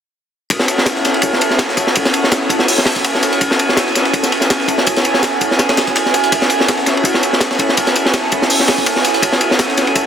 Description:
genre	drum and bass, jungle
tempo	165 BPM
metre	4/4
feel	swing 54% on 16ths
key	F# minor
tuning	A4 = 440 Hz
part	lush unison pad	sustained chords	0.5-10.1 s	C#4 to A4	-18 LUFS	equal	chorus
part	breakbeat sampler-style drum kit	drums	0.5-10.0 s	hi-hat, snare drum, tambourine	-21 LUFS	left 1 dB	high-pass filter on perc, high-pass filter on snare, high-pass filter on hats
part	crunchy breakbeat drum kit	drums	0.5-10.0 s	hi-hat, kick drum, ride cymbal, snare drum	-14 LUFS	equal	high-pass filter on kick, high-pass filter on cymbals, high-pass filter on hats, high-pass filter on snare, high-pass filter on room
part	drifting glass-harmonics texture	texture	1.0-10.1 s	G#5	-22 LUFS	right 7 dB	chorus, built-in reverb
room	moderate plate reverb, RT60 1.8 s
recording	dense, heavily limited modern master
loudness	-12 LUFS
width	side -8 dB against mid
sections	0.5-10.1 A section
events	none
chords	0.5 F#m7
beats	| 0.50 0.86 1.23 1.59 | 1.96 2.32 2.68 3.05 | 3.41 3.77 4.14 4.50 | 4.87 5.23 5.59 5.96 | 6.32 6.68 7.05 7.41 | 7.77 8.14 8.50 8.87 | 9.23 9.59 9.96

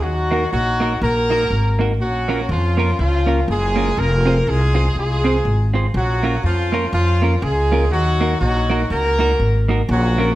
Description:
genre	ska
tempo	122 BPM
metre	4/4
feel	swing 59% on 8ths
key	Bb minor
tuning	A4 = 440 Hz
part	warm horn section	melody	0.0-10.4 s	F3 to Bb4	-20 LUFS	equal	tube saturation, slapback echo, plate reverb
part	upright bass	bass	0.0-10.3 s	F1 to F2	-18 LUFS	equal	none
part	semi-hollow electric guitar	accompaniment	0.3-10.3 s	Bb3 to C5	-23 LUFS	right 2 dB	wide subtle chorus, slapback echo, plate reverb
room	moderate club reverb, RT60 0.8 s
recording	none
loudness	-15 LUFS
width	side -15 dB against mid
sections	0.0-10.4 A section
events	none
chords	0.0 Ebm; 2.0 Bbm; 4.0 Fm; 5.9 Bbm; 7.9 Ebm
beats	| 0.02 0.52 1.01 1.50 | 2.00 2.49 2.98 3.48 | 3.97 4.46 4.96 5.45 | 5.95 6.44 6.93 7.43 | 7.92 8.41 8.91 9.40 | 9.89

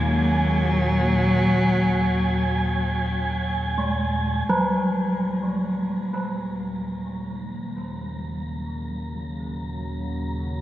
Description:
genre	ambient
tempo	free time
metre	none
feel	none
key	Eb minor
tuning	A4 = 440 Hz
part	rich cello	melody	0.0-3.4 s	Gb3	-24 LUFS	left 1 dB	shimmer reverb, tape echo
part	sweeping resonant pad	sustained chords	0.0-10.6 s	Eb2 to Bb3	-35 LUFS	equal	chorus, shimmer reverb
part	analog drone	drone	0.0-10.6 s	Eb2 to Bb2	-27 LUFS	equal	chorus
part	wind-like tuned noise texture	texture	0.0-10.6 s	Ab5 to Bb5	-31 LUFS	right 2 dB	built-in reverb, shimmer reverb
part	gamelan-type bronze metallophone	arpeggios	3.8-10.6 s	Gb3 to Ab3	-26 LUFS	equal	shimmer reverb, tape echo
room	wet cathedral reverb, RT60 6.3 s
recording	worn, warbling old tape, cassette tape, warbly pitch drift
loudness	-22 LUFS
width	side -13 dB against mid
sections	0.0-4.5 A section; 4.5-10.6 B section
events	filter sweep on synth drone 0.0-4.5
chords	0.0 Ebm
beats	free time

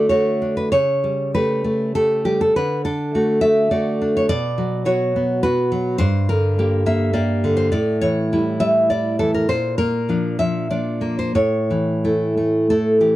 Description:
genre	romantic piece for solo classical guitar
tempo	90-107 BPM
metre	3/4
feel	rubato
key	D major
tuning	A4 = 440 Hz
part	nylon-string guitar	solo	0.0-13.2 s	G2 to E5	-17 LUFS	equal	none
room	light reverb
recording	dark, warm production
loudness	-17 LUFS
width	side -15 dB against mid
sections	0.0-13.2 A section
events	none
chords	0.0 D; 0.7 A7/C#; 2.5 D; 4.3 Bm; 6.0 Gm; 7.7 A7; 9.5 Bb; 11.4 A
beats	0.11 | 0.73 1.34 1.95 | 2.54 3.12 3.71 | 4.29 4.87 5.44 | 6.00 6.57 7.14 | 7.73 8.32 8.91 | 9.49 10.09 10.71 | 11.36 12.03 12.68

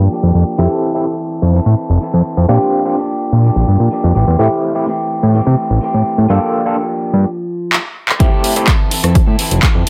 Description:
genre	filtered disco house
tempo	126 BPM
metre	4/4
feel	straight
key	unclear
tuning	A4 = 439 Hz
part	electric guitar through a small old amp	riff	0.0-9.9 s	E3 to A4	-22 LUFS	equal	sidechain pumping, low-pass filter
part	fat analog bass	bass	0.0-9.8 s	F1 to C3	-14 LUFS	equal	tube saturation, sidechain pumping, low-pass filter
part	overdriven tine electric piano	accompaniment	0.6-8.7 s	A3 to A4	-18 LUFS	equal	medium tremolo, phaser, vintage 12-bit sampler grit, sidechain pumping, low-pass filter
part	punchy analog drum machine	drums	7.7-9.9 s	handclaps, hi-hat, rim click	-19 LUFS	equal	overdrive, sidechain pumping on hats
part	electronic kick drum	drums	8.2-9.7 s	none	-14 LUFS	equal	overdrive
room	light reverb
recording	none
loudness	-14 LUFS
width	mono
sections	0.0-8.2 A section; 8.2-9.9 B section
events	filter sweep 0.0-8.2; break 7.3-8.2; drum fill 7.7-8.2; drop 8.2-9.9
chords	0.0 Gm7; 0.6 Fmaj7; 2.5 Bb6; 4.2 Am7; 6.3 Gm7; 8.2 Fmaj7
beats	0.11 | 0.59 1.06 1.54 2.01 | 2.49 2.97 3.44 3.92 | 4.39 4.87 5.35 5.82 | 6.30 6.78 7.25 7.73 | 8.21 8.68 9.16 9.63

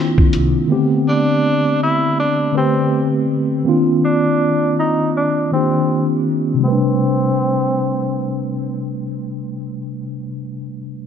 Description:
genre	lo-fi hip hop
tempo	81 BPM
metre	4/4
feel	swing 58% on 16ths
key	unclear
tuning	A4 = 439 Hz
part	breathy tenor saxophone	melody	0.0-8.8 s	C4 to E4	-20 LUFS	right 1 dB	low-pass filter
part	mellow tine electric piano	accompaniment	0.0-11.1 s	C3 to B4	-17 LUFS	equal	medium stereo tremolo, cassette tape, low-pass filter
part	lo-fi sampler-style drum kit	drums	0.2-0.5 s	hi-hat, kick drum	-14 LUFS	equal	none
part	upright bass	bass	0.3-0.5 s	C2	-20 LUFS	left 1 dB	none
room	moderate concert hall reverb, RT60 2.2 s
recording	none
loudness	-15 LUFS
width	side -8 dB against mid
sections	0.0-6.6 A section; 6.6-9.6 B section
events	filter sweep 0.0-6.6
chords	0.0 Cm11; 0.7 Am11; 3.7 Cm11; 6.6 Am11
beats	| 0.70 1.44 2.18 2.92 | 3.66 4.40 5.14 5.89 | 6.63 7.37 8.11 8.85

